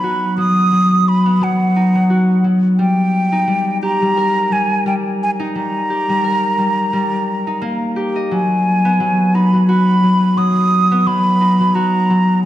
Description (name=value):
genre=folktronica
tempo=87 BPM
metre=4/4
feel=swing 56% on 16ths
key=G# minor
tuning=A4 = 440 Hz
part: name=breathy mellow silver concert flute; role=melody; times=0.0-12.4 s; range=F#5 to D#6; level=-17 LUFS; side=right 1 dB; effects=vintage 12-bit sampler grit, ping-pong delay
part: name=concert harp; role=arpeggios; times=0.0-12.5 s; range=F#3 to D#5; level=-15 LUFS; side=left 1 dB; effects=none
room=wet recital hall reverb, RT60 1.5 s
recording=none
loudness=-13 LUFS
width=side -13 dB against mid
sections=0.0-8.3 A section; 8.3-12.5 B section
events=none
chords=0.0 F#5; 2.8 D#; 8.3 G#m7